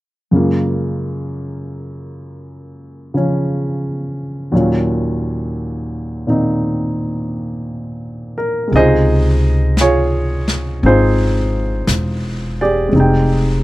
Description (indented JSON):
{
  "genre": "jazz",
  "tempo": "57 BPM",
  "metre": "4/4",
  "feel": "swing 67% on 8ths",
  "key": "Db major",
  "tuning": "A4 = 440 Hz",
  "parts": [
    { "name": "warm baby grand piano", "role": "accompaniment", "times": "0.3-13.6 s", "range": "Eb2 to G5", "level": "-16 LUFS", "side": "equal", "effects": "none" },
    { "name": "upright bass", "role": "bass", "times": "8.7-13.6 s", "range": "Fb1 to Db2", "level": "-16 LUFS", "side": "equal", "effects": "none" },
    { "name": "jazz brush drum kit", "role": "drums", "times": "8.7-13.6 s", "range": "brushed snare drum, hi-hat, snare drum", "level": "-24 LUFS", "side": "left 1 dB", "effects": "none" }
  ],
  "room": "little or no reverb",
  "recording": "dry, close 1970s-style studio recording",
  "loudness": "-14 LUFS",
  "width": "side -18 dB against mid",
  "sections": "0.3-8.7 A section; 8.7-13.6 B section",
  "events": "none",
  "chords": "0.3 Gbmaj7; 4.5 Ebm7; 8.7 Dbmaj7; 12.9 Fm9"
}